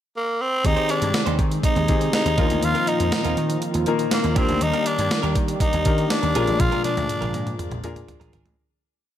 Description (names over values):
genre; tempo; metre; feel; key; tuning
1980s-style pop; 121 BPM; 4/4; straight; unclear; A4 = 438 Hz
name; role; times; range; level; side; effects
raspy tenor saxophone; melody; 0.2-7.5 s; Bb3 to F4; -24 LUFS; equal; ping-pong delay
clear concert grand piano; accompaniment; 0.6-8.6 s; Bb2 to Bb4; -26 LUFS; left 5 dB; none
sweeping resonant pad; sustained chords; 0.6-8.6 s; Bb2 to D5; -30 LUFS; right 1 dB; chorus
direct-recorded clean electric guitar; riff; 0.6-8.5 s; D4 to C5; -33 LUFS; right 7 dB; lush chorus, ping-pong delay
vintage slap bass; bass; 0.6-8.6 s; Ab1 to Eb3; -25 LUFS; right 1 dB; none
clean 12-bit digital drum machine; drums; 0.6-8.6 s; hi-hat, kick drum, snare drum, toms; -24 LUFS; right 1 dB; gated reverb
room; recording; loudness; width
light reverb, digital ambience; none; -19 LUFS; side -11 dB against mid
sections
0.0-0.6 pickup bar; 0.6-8.6 pre-chorus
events
fade-out 6.6-8.6; drum fill 6.6-8.6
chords
0.0 N.C.; 0.6 Abmaj7/Eb; 2.4 Bbsus4; 4.4 Ebmaj7; 6.3 Bb7